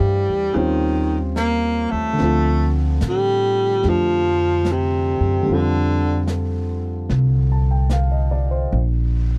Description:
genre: jazz ballad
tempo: 73 BPM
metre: 4/4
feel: swing 67% on 8ths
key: unclear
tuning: A4 = 440 Hz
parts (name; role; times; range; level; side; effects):
- warm baritone saxophone; melody; 0.0-6.3 s; C3 to Bb3; -22 LUFS; equal; none
- warm upright piano; accompaniment; 0.0-8.8 s; D3 to A5; -27 LUFS; equal; none
- upright bass; bass; 0.0-9.4 s; Bb1 to A2; -22 LUFS; equal; none
- vintage brush drum kit; drums; 0.5-9.4 s; brushed snare drum, hi-hat, snare drum; -35 LUFS; equal; none
room: little or no reverb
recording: dry, close 1970s-style studio recording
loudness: -19 LUFS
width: mono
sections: 0.0-9.4 A section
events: none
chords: 0.0 Fmaj13 (rootless); 0.6 Eb13; 2.2 Dm7; 5.5 F69; 8.7 N.C.

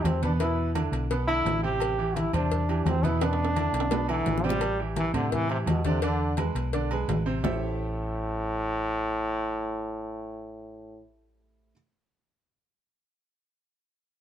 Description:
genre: latin, salsa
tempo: 170 BPM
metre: 4/4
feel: straight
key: A minor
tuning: A4 = 440 Hz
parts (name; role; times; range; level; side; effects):
- bright trombone; melody; 0.0-11.0 s; A2 to G4; -29 LUFS; equal; plate reverb
- bright baby grand piano; accompaniment; 0.0-11.7 s; B2 to E5; -32 LUFS; right 3 dB; none
- hollow-body short-scale fingered electric bass; bass; 0.0-11.7 s; A1 to A2; -30 LUFS; equal; none
- congas; percussion; 0.1-7.5 s; none; -32 LUFS; left 2 dB; none
- cowbell and bongos; percussion; 0.1-7.5 s; none; -35 LUFS; left 8 dB; none
- timbales and agogo bells; percussion; 0.1-7.5 s; none; -35 LUFS; right 7 dB; none
room: light reverb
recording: dark, warm production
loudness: -25 LUFS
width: side -10 dB against mid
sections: 0.0-4.6 A section; 4.6-7.4 B section; 7.4-10.3 C section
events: drum fill 3.2-4.6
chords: 0.4 E5; 1.8 Am7; 3.2 E5; 4.6 Am7; 6.0 E7; 7.4 Am7

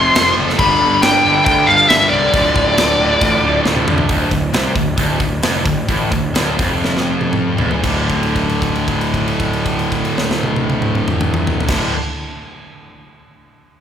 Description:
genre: heavy metal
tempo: 115-137 BPM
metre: 4/4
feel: straight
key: D minor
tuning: A4 = 440 Hz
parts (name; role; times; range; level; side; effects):
- high-gain lead guitar; melody; 0.0-3.6 s; D5 to C6; -13 LUFS; left 2 dB; distortion
- pipe organ, clarinet reed; sustained chords; 0.0-4.1 s; D3 to B4; -28 LUFS; right 3 dB; none
- high-gain distorted guitar; riff; 0.0-11.9 s; D2 to G3; -21 LUFS; right 6 dB; distortion
- scooped high-gain guitar; riff; 0.0-11.9 s; D2 to G3; -20 LUFS; left 4 dB; distortion
- fuzz picked electric bass; bass; 0.0-11.9 s; D1 to D2; -22 LUFS; equal; overdrive
- tight metal drum kit; drums; 0.2-11.8 s; crash cymbal, hi-hat, kick drum, snare drum, toms; -19 LUFS; equal; none
room: moderate church reverb, RT60 3.4 s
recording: rough rehearsal-room recording, tube saturation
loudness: -13 LUFS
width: side -9 dB against mid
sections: 0.0-4.1 A section; 4.1-7.8 B section; 7.8-12.0 C section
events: drum fill 3.7-4.1, 6.8-7.8; slowing down 4.1-7.8; held note 7.8-11.7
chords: 0.0 F; 0.6 G; 2.3 Dm; 7.8 D5

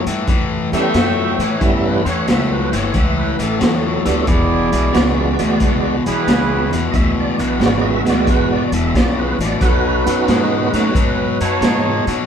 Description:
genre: electric blues shuffle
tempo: 90 BPM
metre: 4/4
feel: swing 68% on 8ths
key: E mixolydian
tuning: A4 = 438 Hz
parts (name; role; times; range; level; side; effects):
- tonewheel organ; accompaniment; 0.0-11.6 s; G3 to E5; -21 LUFS; right 4 dB; slow rotary speaker, overdrive, chorus vibrato
- cranked stack guitar; riff; 0.0-12.3 s; E2 to G#3; -19 LUFS; left 4 dB; overdrive
- upright bass; bass; 0.1-12.3 s; E1 to B2; -22 LUFS; equal; none
- crunchy breakbeat drum kit; drums; 0.1-12.2 s; hi-hat, kick drum, snare drum; -19 LUFS; equal; none
- mellow horn section; stabs; 0.7-12.2 s; D#4 to A5; -21 LUFS; right 3 dB; none
room: light reverb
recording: band playing live in one room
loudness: -14 LUFS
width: side -8 dB against mid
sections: 0.0-12.3 A section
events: none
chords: 0.0 A7; 4.3 E7; 9.6 B7

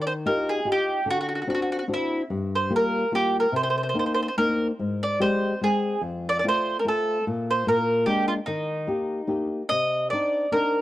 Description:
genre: italian folk, Italian serenade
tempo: 146 BPM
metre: 3/4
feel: swing 53% on 8ths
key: Eb major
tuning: A4 = 436 Hz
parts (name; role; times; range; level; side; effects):
- mandolin; melody; 0.0-10.8 s; Eb4 to Eb5; -24 LUFS; right 1 dB; none
- flamenco guitar; accompaniment; 0.0-10.8 s; F2 to G5; -27 LUFS; left 2 dB; none
room: small room ambience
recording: dry, close 1970s-style studio recording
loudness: -22 LUFS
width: side -14 dB against mid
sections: 0.0-9.7 A section; 9.7-10.8 B section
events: none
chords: 0.0 Ebadd9; 1.1 D7; 2.3 Gm7; 3.5 Cm7; 4.8 Abmaj7; 6.0 F; 7.2 N.C.; 7.6 Bb7; 8.4 Eb; 9.7 Cmadd9

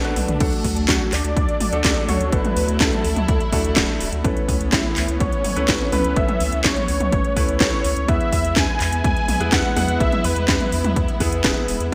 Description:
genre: italo disco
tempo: 125 BPM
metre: 4/4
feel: straight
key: unclear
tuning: A4 = 442 Hz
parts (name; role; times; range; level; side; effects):
- dark studio string section; sustained chords; 0.0-11.9 s; F#3 to E4; -30 LUFS; equal; none
- warm concert grand piano; stabs; 0.0-11.9 s; A3 to B4; -30 LUFS; equal; digital delay
- round analog bass; bass; 0.0-11.9 s; D1 to E2; -27 LUFS; equal; none
- house drum kit; drums; 0.0-11.9 s; crash cymbal, handclaps, hi-hat, snare drum, toms; -25 LUFS; equal; overdrive, gated reverb
- electronic kick drum; drums; 0.4-11.5 s; none; -25 LUFS; equal; overdrive
- unison lead; melody; 0.9-11.0 s; E4 to G#5; -27 LUFS; equal; delay
room: light reverb, digital ambience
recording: bright 1980s-style digital production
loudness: -20 LUFS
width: mono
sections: 0.0-11.9 A section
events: drum fill 0.2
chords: 0.4 D; 4.2 Aadd9; 8.1 E

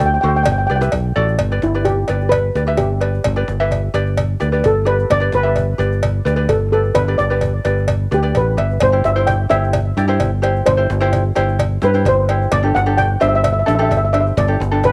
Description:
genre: calypso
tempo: 129 BPM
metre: 4/4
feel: straight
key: G major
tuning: A4 = 440 Hz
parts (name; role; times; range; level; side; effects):
- steel pan; melody; 0.0-14.9 s; E4 to G5; -20 LUFS; equal; cassette tape, plate reverb, tape echo
- ukulele; accompaniment; 0.0-14.9 s; D4 to E5; -23 LUFS; equal; cassette tape, plate reverb
- fingered electric bass; bass; 0.0-14.9 s; G1 to G2; -20 LUFS; equal; none
- cajon; drums; 0.0-14.9 s; none; -30 LUFS; equal; cassette tape
- cowbell; percussion; 0.5-14.9 s; none; -24 LUFS; equal; none
room: moderate studio reverb, RT60 0.5 s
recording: home recording on cassette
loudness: -16 LUFS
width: mono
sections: 0.0-1.4 A section; 1.4-14.9 B section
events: kick and snare drop out 1.2; steel pan solo 1.4-14.9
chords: 0.5 G; 0.9 D; 1.4 G; 8.8 C/G; 12.5 Dsus4/G

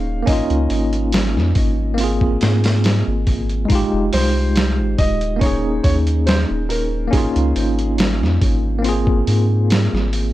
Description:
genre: trip hop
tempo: 70 BPM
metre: 4/4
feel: straight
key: unclear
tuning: A4 = 440 Hz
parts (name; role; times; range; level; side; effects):
- felt-muted upright piano; melody; 0.0-7.9 s; Ab4 to F5; -27 LUFS; right 1 dB; vintage 12-bit sampler grit, dub echo
- bell-like tine electric piano; accompaniment; 0.0-10.3 s; Ab3 to Ab4; -20 LUFS; equal; medium stereo tremolo, vintage 12-bit sampler grit, low-pass filter
- soft dub sub bass; bass; 0.0-10.3 s; Eb1 to Ab2; -19 LUFS; equal; none
- trip hop sampler-style drum kit; drums; 0.3-10.3 s; hi-hat, kick drum, snare drum; -19 LUFS; equal; none
room: digital ambience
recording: dry, gritty hardware recording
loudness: -15 LUFS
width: side -15 dB against mid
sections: 0.0-10.3 A section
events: none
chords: 0.3 Db69; 2.0 Ab69; 3.7 Fm9; 5.4 Eb7sus4; 7.1 Db69; 8.8 Ab69

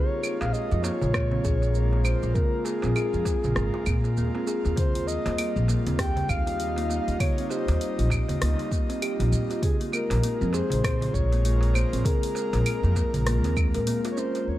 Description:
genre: organic downtempo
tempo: 99 BPM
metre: 4/4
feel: swing 59% on 16ths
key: Bb dorian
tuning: A4 = 440 Hz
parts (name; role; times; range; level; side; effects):
- breathy flute-like synth lead; melody; 0.0-14.6 s; Ab4 to G5; -32 LUFS; left 1 dB; chorus, digital delay
- airy breathy pad; sustained chords; 0.0-14.6 s; G3 to Eb5; -34 LUFS; equal; chorus, sidechain pumping
- kalimba; arpeggios; 0.0-14.5 s; Ab3 to Bb4; -31 LUFS; equal; digital delay
- deep house drum kit; drums; 0.2-14.6 s; claves, hi-hat, rim click, shaker; -34 LUFS; right 1 dB; low-pass filter on cymbals, low-pass filter on perc, low-pass filter on snare, low-pass filter on hats, low-pass filter on room
- darbuka; percussion; 0.2-14.5 s; none; -35 LUFS; right 1 dB; none
- upright bass; bass; 0.4-14.6 s; Ab1 to Bb2; -25 LUFS; equal; sidechain pumping
- electronic kick drum; drums; 1.1-13.7 s; none; -26 LUFS; equal; none
room: light reverb, digital ambience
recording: dark, warm production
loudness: -23 LUFS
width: side -14 dB against mid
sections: 0.0-14.5 A section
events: break 13.9-14.5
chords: 0.0 Bbm7; 4.8 Ebadd9; 9.6 Bb7(no3)

